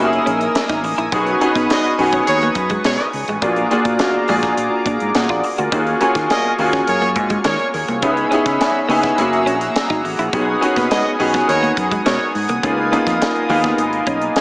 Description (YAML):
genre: polished 1980s jazz-funk pop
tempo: 104 BPM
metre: 4/4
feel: straight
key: unclear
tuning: A4 = 440 Hz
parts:
  - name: clear grand piano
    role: accompaniment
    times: 0.0-14.4 s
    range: A#3 to G#5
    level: -17 LUFS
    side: equal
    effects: ensemble chorus
  - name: chorused pulse-width pad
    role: sustained chords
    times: 0.0-14.4 s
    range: G#4 to E6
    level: -23 LUFS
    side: equal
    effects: none
  - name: fingered electric bass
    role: bass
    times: 0.0-14.3 s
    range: F#1 to D#3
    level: -25 LUFS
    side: equal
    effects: none
  - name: crisp fusion drum kit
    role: drums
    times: 0.1-14.4 s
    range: hi-hat, kick drum, snare drum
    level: -23 LUFS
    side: equal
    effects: none
  - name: semi-hollow electric guitar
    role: riff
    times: 0.3-14.2 s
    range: G#3 to F#4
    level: -25 LUFS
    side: right 1 dB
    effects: wide subtle chorus
  - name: clear horn section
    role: second line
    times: 1.4-12.3 s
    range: A#3 to D#5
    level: -21 LUFS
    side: right 1 dB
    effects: digital delay
room: moderate lush hall reverb, RT60 2.7 s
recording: small speaker sound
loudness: -14 LUFS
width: side -24 dB against mid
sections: 0.0-14.4 A section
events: grand piano fill 13.8-14.4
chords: 0.0 F#13; 1.1 B69; 3.4 A#7b13; 5.7 D#m11; 8.0 C#m7; 9.2 F#9; 10.3 B6; 12.6 C#13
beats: 0.55 | 1.12 1.70 2.27 2.85 | 3.42 4.00 4.57 5.15 | 5.72 6.30 6.87 7.45 | 8.02 8.60 9.18 9.75 | 10.33 10.90 11.48 12.06 | 12.63 13.21 13.79 14.36